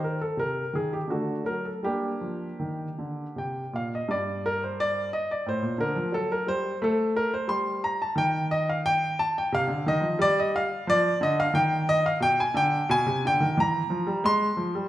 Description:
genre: classical, baroque-style suite movement for grand piano.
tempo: 88 BPM.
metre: 3/4.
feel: rubato.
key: G minor.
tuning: A4 = 442 Hz.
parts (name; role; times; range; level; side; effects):
warm baby grand piano; solo; 0.0-14.9 s; G2 to C6; -24 LUFS; equal; none.
room: wet recital hall reverb, RT60 1.6 s.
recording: none.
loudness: -24 LUFS.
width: side -14 dB against mid.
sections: 0.0-4.1 A section; 4.1-14.9 B section.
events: none.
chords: 0.4 Cm7; 1.1 D; 1.8 Gm; 6.1 F#dim; 7.5 N.C.; 8.2 Cm/Eb (rootless); 10.2 G5; 11.5 N.C.; 12.2 B(#5, no3); 13.6 Edim; 14.2 Fm.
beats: 0.37 1.09 | 1.83 2.59 3.35 | 4.09 4.78 5.46 | 6.13 6.81 7.48 | 8.15 8.83 9.52 | 10.19 10.87 11.54 | 12.21 12.89 13.57 | 14.24.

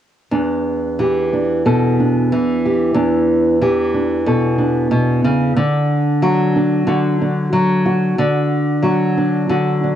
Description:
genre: folk, solo fingerstyle acoustic guitar.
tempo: 92 BPM.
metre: 4/4.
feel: rubato.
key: E minor.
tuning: A4 = 440 Hz.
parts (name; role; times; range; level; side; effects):
nylon-string guitar; solo; 0.3-10.0 s; E2 to A4; -14 LUFS; equal; cassette tape.
room: light reverb, small room ambience.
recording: home recording on cassette.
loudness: -14 LUFS.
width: side -10 dB against mid.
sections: 0.3-10.0 A section.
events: none.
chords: 0.3 Em7; 5.6 D.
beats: | 0.31 0.98 1.65 2.31 | 2.96 3.62 4.28 4.93 | 5.59 6.24 6.88 7.53 | 8.18 8.83 9.49.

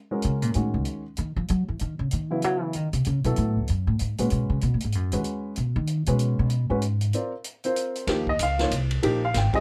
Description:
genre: modal jazz.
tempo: 191 BPM.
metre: 3/4.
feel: swing 61% on 8ths.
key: B mixolydian.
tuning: A4 = 439 Hz.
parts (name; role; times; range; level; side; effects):
warm baby grand piano; accompaniment; 0.1-9.6 s; C#3 to G5; -29 LUFS; equal; none.
upright bass; bass; 0.2-9.6 s; Ab1 to F#3; -27 LUFS; equal; none.
vintage drum kit; drums; 0.2-9.6 s; hi-hat, kick drum, ride cymbal, snare drum; -37 LUFS; equal; none.
room: little or no reverb.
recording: close, detailed microphones.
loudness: -26 LUFS.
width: mono.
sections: 0.5-8.1 A section; 8.1-9.6 A section.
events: upright bass solo 0.0-8.1.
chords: 0.0 Gbadd9; 0.5 B9; 4.3 G#m; 7.1 A#add9; 8.1 Eb13.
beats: 0.23 | 0.54 0.85 1.17 | 1.48 1.79 2.11 | 2.42 2.73 3.05 | 3.36 3.68 3.99 | 4.30 4.62 4.93 | 5.25 5.56 5.88 | 6.19 6.50 6.82 | 7.13 7.45 7.76 | 8.08 8.39 8.71 | 9.03 9.34.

